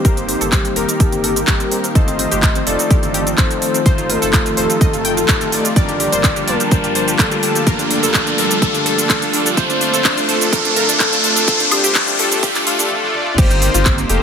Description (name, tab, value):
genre	progressive house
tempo	126 BPM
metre	4/4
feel	straight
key	G minor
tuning	A4 = 440 Hz
part	soft octave-layered synth lead	melody	0.0-14.2 s	G4 to Eb5	-22 LUFS	left 2 dB	chorus, dub echo
part	airy breathy pad	sustained chords	0.0-14.2 s	D3 to G4	-26 LUFS	right 1 dB	chorus, sidechain pumping
part	analog pluck	arpeggios	0.0-14.2 s	C4 to G5	-24 LUFS	equal	chorus, sidechain pumping, dub echo
part	soft supersaw	stabs	0.0-14.2 s	G3 to A5	-21 LUFS	left 1 dB	sidechain pumping, low-pass filter, dub echo
part	round analog bass	bass	0.0-14.2 s	D1 to G1	-26 LUFS	equal	sidechain pumping
part	electronic kick drum	drums	0.0-14.0 s	none	-15 LUFS	equal	none
part	house drum kit	drums	0.0-14.2 s	crash cymbal, handclaps, hi-hat, shaker, toms, woodblock	-19 LUFS	right 1 dB	sidechain pumping on hats, sidechain pumping on perc, sidechain pumping on toms, sidechain pumping on cymbals
part	riser	sound effects	3.1-12.9 s	none	-20 LUFS	equal	none
room	light reverb, digital ambience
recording	high-pass filter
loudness	-13 LUFS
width	side -7 dB against mid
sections	0.0-13.4 A section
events	build-up 0.0-13.4; filter sweep on supersaw synth 0.0-13.4; filter sweep on analog synth pad 0.0-13.4; filter sweep 0.0-13.4; riser 3.1-12.9; break 12.9-13.4; drum fill 12.9-13.4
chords	0.0 Cm7; 2.0 F7; 5.8 Gm7; 13.4 Cm7